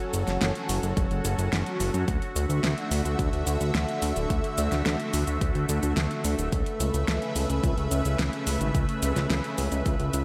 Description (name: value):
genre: synthwave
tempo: 108 BPM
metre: 4/4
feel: straight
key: unclear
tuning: A4 = 438 Hz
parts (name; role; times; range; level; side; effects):
- lush unison pad; sustained chords; 0.0-10.2 s; C#3 to E5; -32 LUFS; equal; chorus, phaser, sidechain pumping
- pop drum kit; drums; 0.0-10.2 s; hi-hat, shaker, snare drum; -34 LUFS; equal; studio reverb, slapback echo
- fat analog bass; bass; 0.1-10.2 s; D1 to F#2; -30 LUFS; equal; tube saturation
- electronic kick drum; drums; 1.0-10.0 s; none; -31 LUFS; equal; studio reverb
room: moderate lush hall reverb, RT60 1.8 s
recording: big arena sound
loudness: -27 LUFS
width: mono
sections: 0.0-10.2 A section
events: none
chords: 0.0 F#m; 2.1 Dadd9; 6.5 Aadd9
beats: 0.41 0.97 1.52 | 2.08 2.63 3.19 3.75 | 4.30 4.86 5.41 5.97 | 6.52 7.08 7.63 8.19 | 8.75 9.30 9.86